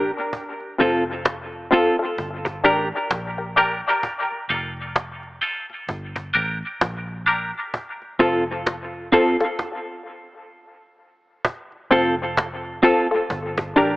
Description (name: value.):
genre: dub reggae.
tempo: 65 BPM.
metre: 4/4.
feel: swing 60% on 16ths.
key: unclear.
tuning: A4 = 439 Hz.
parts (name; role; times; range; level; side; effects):
clean electric guitar; accompaniment; 0.0-14.0 s; C4 to Bb4; -22 LUFS; right 1 dB; high-pass filter, dub echo.
filtered dub chord stab; stabs; 0.0-13.9 s; C4 to Bb4; -23 LUFS; left 2 dB; chorus, high-pass filter, dub echo.
vintage muted fingered electric bass; bass; 0.0-14.0 s; F1 to Bb1; -34 LUFS; equal; none.
cajon; drums; 0.1-13.9 s; none; -23 LUFS; equal; none.
room: moderate spring reverb, RT60 2.7 s.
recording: echo-heavy mix, AM radio sound.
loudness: -20 LUFS.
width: side -19 dB against mid.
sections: 0.0-11.4 A section; 11.4-14.0 B section.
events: filter sweep 0.3-7.7; stop 9.6-11.4.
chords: 0.3 F; 2.2 Gm; 4.0 F; 5.9 Gm; 7.7 F; 9.6 N.C.; 11.4 F; 13.3 Gm.